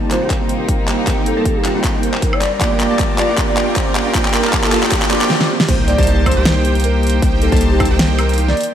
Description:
future bass; 156 BPM; 4/4; swing 55% on 16ths, half-time; A4 = 442 Hz
glassy digital keys; accompaniment; 0.0-5.7 s; Eb3 to G4; -25 LUFS; right 4 dB; chorus, phaser, sidechain pumping, analog delay
rich chamber string section; sustained chords; 0.0-5.3 s; C3 to Bb4; -27 LUFS; left 1 dB; sidechain pumping
big bright polysynth; riff; 0.0-8.6 s; Bb3 to A5; -19 LUFS; right 1 dB; sidechain pumping, analog delay
saturated sub bass; bass; 0.0-8.5 s; G1 to C2; -20 LUFS; equal; sidechain pumping, high-pass filter
riser, swell and impact; sound effects; 2.3-7.2 s; -29 LUFS; equal
warm velvety synth lead; melody; 0.1-8.6 s; G4 to D5; -22 LUFS; equal; chorus, sidechain pumping, analog delay
pop drum kit; drums; 0.1-8.7 s; crash cymbal, handclaps, hi-hat, snare drum, woodblock; -19 LUFS; equal
electronic kick drum; drums; 0.3-7.9 s; -19 LUFS; equal
moderate lush hall reverb, RT60 2.0 s, digital ambience; dreamy mix soaked in reverb; -13 LUFS; side -10 dB against mid
0.0-5.7 A section; 5.7-8.7 B section
build-up 0.0-5.7; drum fill 0.0-5.3, 5.3-5.7; filter sweep on analog polysynth 0.0-5.7; swell 5.0-5.7; drop 5.7-8.7; impact 5.7-7.2
0.0 Cm7; 2.4 Gm7; 5.7 Cm7

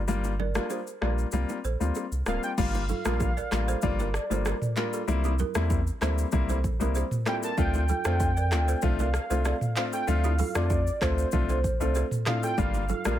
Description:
afrobeats; 96 BPM; 4/4; straight; A4 = 441 Hz
saturated sub bass; bass; 0.0-13.2 s; D1 to F2; -27 LUFS; equal
warm baby grand piano; accompaniment; 0.1-13.2 s; G3 to F4; -31 LUFS; left 7 dB
afro-pop drum kit; drums; 0.1-13.2 s; crash cymbal, handclaps, hi-hat, kick drum, rim click, shaker, toms; -30 LUFS; equal
congas and bongos; percussion; 0.1-13.0 s; -37 LUFS; right 8 dB
balafon; riff; 0.4-13.2 s; E4 to D5; -35 LUFS; right 9 dB
warm velvety synth lead; melody; 2.3-13.2 s; C5 to A5; -33 LUFS; right 1 dB; chorus, ping-pong delay
digital ambience; -24 LUFS; side -12 dB against mid
0.0-2.6 A section; 2.6-13.2 B section
break 0.1-2.6
0.0 Gm7; 1.3 C7sus4; 2.6 Gm7; 5.1 C7; 12.6 Gm7

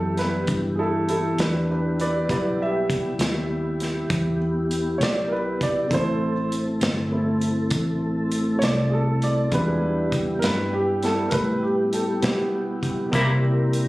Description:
slow blues; 66 BPM (dotted quarters); 12/8; straight; E minor; A4 = 440 Hz
dark grand piano; accompaniment; 0.0-13.9 s; G3 to E5; -25 LUFS; right 1 dB
mellow tonewheel organ; sustained chords; 0.0-13.9 s; E3 to Bb4; -26 LUFS; equal; slow rotary speaker
vintage muted fingered electric bass; bass; 0.0-13.9 s; G1 to C3; -26 LUFS; equal
natural country drum kit; drums; 0.2-13.9 s; hi-hat, kick drum, snare drum; -27 LUFS; equal
clean electric guitar; accompaniment; 13.1-13.3 s; C3 to E4; -25 LUFS; left 1 dB; harmonic tremolo
light reverb, small room ambience; recorded on a phone in the room, studio reverb; -21 LUFS; side -18 dB against mid
0.0-13.9 A section
grand piano solo 0.0-13.9
0.0 Em; 5.9 Am; 9.5 Em; 13.1 C7

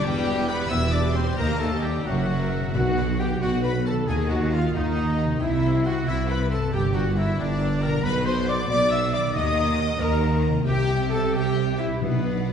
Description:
cinematic; 90 BPM (dotted quarters); 6/8; straight; A4 = 439 Hz
rich symphonic violin section; melody; 0.0-12.5 s; B4 to E6; -37 LUFS; left 4 dB
clear oboe; second line; 0.0-12.5 s; B3 to E5; -36 LUFS; equal
warm clarinet; second line; 0.0-2.7 s; F#4 to E5; -36 LUFS; left 1 dB
warm symphonic violin section; second line; 0.0-12.5 s; A#4 to E6; -40 LUFS; left 3 dB
rich symphonic viola section; accompaniment; 0.0-12.5 s; B3 to E5; -33 LUFS; equal
mellow French horn section; sustained chords; 0.0-12.5 s; F#3 to E5; -29 LUFS; left 3 dB
concert harp; arpeggios; 0.0-12.5 s; F#2 to E5; -33 LUFS; left 5 dB
clear trumpet section; stabs; 0.0-12.5 s; B3 to E5; -32 LUFS; equal
dark tuba; bass; 0.0-12.5 s; E1 to D#2; -29 LUFS; right 1 dB
rich symphonic cello section; bass; 0.0-12.5 s; Eb2 to D#3; -29 LUFS; right 1 dB
rich symphonic double bass section; bass; 0.0-12.5 s; E1 to Eb2; -27 LUFS; right 2 dB
mellow concert flute; second line; 2.7-12.5 s; B4 to E6; -35 LUFS; equal
timpani; percussion; 2.8-3.4, 12.0-12.5 s; B2; -29 LUFS; right 2 dB
wet scoring stage reverb, RT60 1.5 s; heard from further back in the room, nothing above 10.9 kHz; -21 LUFS; side -7 dB against mid
0.0-2.7 A section; 2.7-12.5 B section
0.0 Em; 1.4 Eb; 2.1 F#7; 2.7 Bm; 4.1 D#m; 5.4 C; 6.7 Gm; 8.0 Bm; 9.3 D#m; 10.7 C; 12.0 Bm

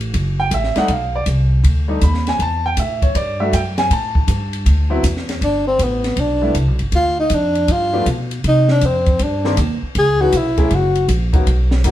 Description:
jazz, small-group swing and bop; 159 BPM; 4/4; swing 66% on 8ths; G major; A4 = 440 Hz
upright bass; bass; 0.0-11.9 s; F#1 to C3; -17 LUFS; equal
compact cocktail drum kit; drums; 0.0-11.9 s; hi-hat, kick drum, ride cymbal, snare drum; -23 LUFS; equal
clear upright piano; accompaniment; 0.4-11.9 s; Eb3 to B5; -20 LUFS; equal
breathy tenor saxophone; melody; 5.4-11.1 s; B3 to G#4; -17 LUFS; left 1 dB
moderate studio reverb, RT60 0.9 s; band playing live in one room; -14 LUFS; side -13 dB against mid
0.0-5.4 A section; 5.4-11.9 A section
tenor saxophone solo 5.4-11.9
0.0 Bm7 (rootless); 0.9 B(#9); 2.4 Em11; 3.9 Gsus2; 4.7 D13; 5.4 Gadd9; 6.9 Dm; 7.7 G7; 8.4 Cmadd9; 10.0 C#m7; 10.7 F#

